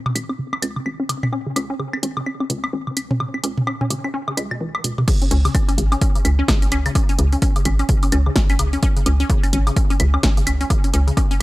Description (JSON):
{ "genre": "minimal techno", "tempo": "128 BPM", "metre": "4/4", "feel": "swing 59% on 16ths", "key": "unclear", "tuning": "A4 = 440 Hz", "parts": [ { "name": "resonant blip pluck", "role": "riff", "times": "0.1-11.3 s", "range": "B2 to C#4", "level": "-25 LUFS", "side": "left 1 dB", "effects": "chorus, sidechain pumping, analog delay" }, { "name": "electronic toms, woodblock and claves", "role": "percussion", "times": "0.1-11.3 s", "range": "none", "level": "-26 LUFS", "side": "equal", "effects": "overdrive" }, { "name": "hollow knocking FM bass", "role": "bass", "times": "0.2-11.1 s", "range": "G#1 to C#2", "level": "-19 LUFS", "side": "equal", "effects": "sidechain pumping, high-pass filter" }, { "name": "punchy analog drum machine", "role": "drums", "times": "0.2-11.4 s", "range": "crash cymbal, hi-hat, snare drum", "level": "-24 LUFS", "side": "right 1 dB", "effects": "overdrive" }, { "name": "electronic kick drum", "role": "drums", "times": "5.1-11.3 s", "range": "none", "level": "-18 LUFS", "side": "equal", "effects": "overdrive" } ], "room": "digital ambience", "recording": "dry, gritty hardware recording", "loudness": "-17 LUFS", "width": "side -19 dB against mid", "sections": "0.0-5.1 A section; 5.1-11.4 B section", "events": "filter sweep on synth arpeggio sound 0.0-5.1; drop 5.1-11.4", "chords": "0.0 C#5" }